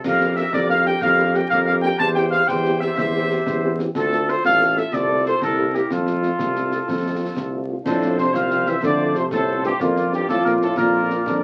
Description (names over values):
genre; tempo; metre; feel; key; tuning
military-style march for wind band; 123 BPM (dotted quarters); 6/8; straight; F major; A4 = 440 Hz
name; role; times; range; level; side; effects
mellow trumpet section; melody; 0.0-11.4 s; F4 to A5; -23 LUFS; equal; none
mellow woodwind section; second line; 0.0-11.4 s; E4 to D5; -29 LUFS; equal; none
clear tuba; bass; 0.0-11.4 s; A1 to F2; -26 LUFS; equal; none
concert snare drum, clash cymbals and concert bass drum; drums; 0.0-11.4 s; none; -33 LUFS; equal; none
mellow French horn section; accompaniment; 0.2-11.2 s; A3 to A4; -30 LUFS; equal; none
dark euphonium; second line; 7.9-11.4 s; F2 to F3; -28 LUFS; equal; none
clear trombone section; sustained chords; 7.9-11.4 s; A3 to F4; -27 LUFS; equal; none
room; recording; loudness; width
moderate small room ambience, RT60 0.5 s; very old 78 rpm record, vinyl crackle; -20 LUFS; mono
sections
0.0-7.9 A section; 7.9-11.4 A section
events
none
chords
0.0 Gm7/F; 2.0 C/E; 4.0 Dm; 4.9 F/C; 5.4 C7; 5.9 F; 9.8 Bb/F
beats
| 0.04 0.53 | 1.02 1.51 | 2.00 2.49 | 2.98 3.47 | 3.96 4.44 | 4.93 5.42 | 5.91 6.39 | 6.88 7.37 | 7.86 8.35 | 8.83 9.32 | 9.81 10.29 | 10.78 11.27